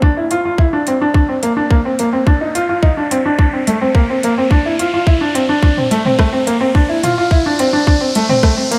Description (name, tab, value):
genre	piano and strings electronica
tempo	107 BPM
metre	4/4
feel	straight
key	unclear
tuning	A4 = 440 Hz
part	clear baby grand piano	riff	0.0-8.8 s	A3 to F4	-16 LUFS	equal	digital delay
part	electronic kick drum	drums	0.0-8.5 s	none	-14 LUFS	equal	overdrive, studio reverb
part	riser	sound effects	0.0-8.8 s	none	-28 LUFS	equal	none
part	deep house drum kit	drums	0.3-8.8 s	hi-hat, rim click, toms	-24 LUFS	equal	overdrive, studio reverb
room	wet recital hall reverb, RT60 1.3 s, digital ambience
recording	none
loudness	-14 LUFS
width	mono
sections	0.0-8.8 A section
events	build-up 0.0-8.8; riser 0.0-8.8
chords	none